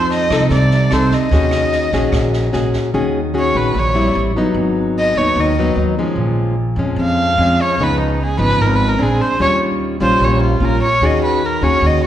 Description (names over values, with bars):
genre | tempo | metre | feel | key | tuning
bossa nova | 149 BPM | 4/4 | straight | Eb minor | A4 = 438 Hz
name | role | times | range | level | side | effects
rich erhu | melody | 0.0-12.1 s | Eb4 to F5 | -17 LUFS | right 1 dB | none
nylon-string guitar | accompaniment | 0.0-12.1 s | F2 to A4 | -17 LUFS | left 1 dB | none
upright bass | bass | 0.0-12.1 s | Ab1 to F2 | -19 LUFS | right 1 dB | none
open jazz drum kit | drums | 0.1-2.8 s | kick drum, rim click, snare drum | -24 LUFS | equal | none
room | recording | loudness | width
wet scoring stage reverb, RT60 1.6 s | recorded in a church or concert hall, nothing above 10.8 kHz | -13 LUFS | side -11 dB against mid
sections
0.0-2.9 A section; 2.9-12.1 B section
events
erhu solo 2.9-12.1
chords
0.0 F7; 1.3 Ebm7; 4.1 Am7; 4.5 Abm7; 6.2 Bbm7; 7.8 Db9; 9.0 Bb9; 9.4 Eb9; 11.0 Ab7sus4/Eb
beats
0.11 0.51 0.91 | 1.32 1.72 2.12 2.53 | 2.93 3.34 3.74 4.14 | 4.55 4.95 5.35 5.76 | 6.16 6.57 6.97 7.37 | 7.78 8.18 8.58 8.99 | 9.39 9.80 10.20 10.60 | 11.01 11.41 11.81